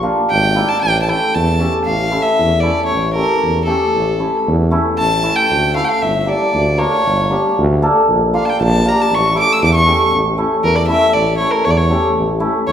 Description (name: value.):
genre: klezmer.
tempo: 116 BPM.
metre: 2/4.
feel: straight.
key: A phrygian dominant.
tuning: A4 = 439 Hz.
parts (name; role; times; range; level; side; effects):
cimbalom; accompaniment; 0.0-12.5 s; A3 to Bb4; -17 LUFS; left 1 dB; none.
warm tuba; bass; 0.0-12.7 s; G1 to E2; -18 LUFS; equal; none.
rich violin; melody; 0.3-12.7 s; A4 to E6; -16 LUFS; equal; none.
room: wet recital hall reverb, RT60 1.5 s.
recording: recorded in a church or concert hall.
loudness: -12 LUFS.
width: side -9 dB against mid.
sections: 0.0-1.9 A section; 1.9-10.1 B section; 10.1-12.7 C section.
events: speeding up 0.0-12.7; violin solo 1.9-10.1.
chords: 0.0 Bb; 0.8 A; 6.0 Gm; 8.1 Bb; 9.1 A.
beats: 0.30 | 0.82 1.34 | 1.86 2.39 | 2.91 3.43 | 3.95 4.47 | 4.99 5.50 | 6.02 6.54 | 7.05 7.57 | 8.08 8.59 | 9.11 9.62 | 10.13 10.64 | 11.15 11.66 | 12.16 12.67.